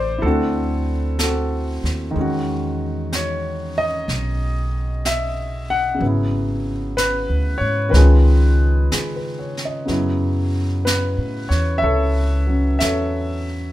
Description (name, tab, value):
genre	jazz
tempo	62 BPM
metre	4/4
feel	swing 67% on 8ths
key	unclear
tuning	A4 = 441 Hz
part	warm concert grand piano	accompaniment	0.0-13.7 s	C#3 to F#5	-21 LUFS	equal	none
part	upright bass	bass	0.0-13.7 s	G#1 to C#3	-20 LUFS	equal	none
part	jazz brush drum kit	drums	0.2-13.7 s	brushed snare drum, hi-hat, snare drum	-26 LUFS	right 1 dB	none
room	little or no reverb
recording	minimal, uncompressed stereo recording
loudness	-17 LUFS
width	side -14 dB against mid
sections	0.0-13.7 A section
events	none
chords	0.2 D9; 2.2 Emaj7; 6.0 G#m7b5; 7.9 C#7; 9.9 F#m7